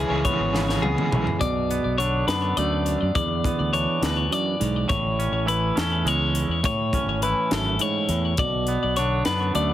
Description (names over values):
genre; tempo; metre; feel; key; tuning
math rock and midwest emo; 69 BPM (dotted quarters); 6/8; straight; unclear; A4 = 442 Hz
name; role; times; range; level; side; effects
twangy electric guitar; accompaniment; 0.0-9.7 s; E2 to E4; -27 LUFS; right 5 dB; none
clean electric guitar; arpeggios; 0.0-9.7 s; G#4 to D5; -25 LUFS; left 4 dB; digital delay
cranked stack guitar; riff; 0.0-1.4 s; C#3 to G#4; -26 LUFS; right 1 dB; overdrive, tremolo
growling fingered electric bass; bass; 0.0-9.7 s; G#1 to A2; -26 LUFS; equal; overdrive
crisp fusion drum kit; drums; 0.2-9.7 s; hi-hat, kick drum, snare drum, toms; -29 LUFS; equal; none
room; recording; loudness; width
light reverb; heavily compressed radio sound, multiband compression; -21 LUFS; side -12 dB against mid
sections
0.0-1.4 A section; 1.4-9.7 B section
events
drum fill 0.5-1.4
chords
0.0 C#m7; 1.4 Bm7; 3.1 E7; 4.9 Amaj9; 8.4 Bm7